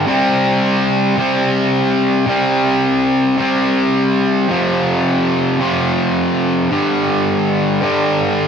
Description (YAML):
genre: rock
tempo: 108 BPM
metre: 4/4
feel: straight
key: unclear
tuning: A4 = 445 Hz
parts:
  - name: distorted electric guitar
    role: solo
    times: 0.0-8.5 s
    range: F2 to C4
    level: -13 LUFS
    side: equal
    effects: distortion
room: wet lush hall reverb, RT60 1.8 s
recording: big arena sound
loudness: -13 LUFS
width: side -7 dB against mid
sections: 0.0-8.5 A section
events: none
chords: 0.1 C5; 4.5 F5; 6.7 G5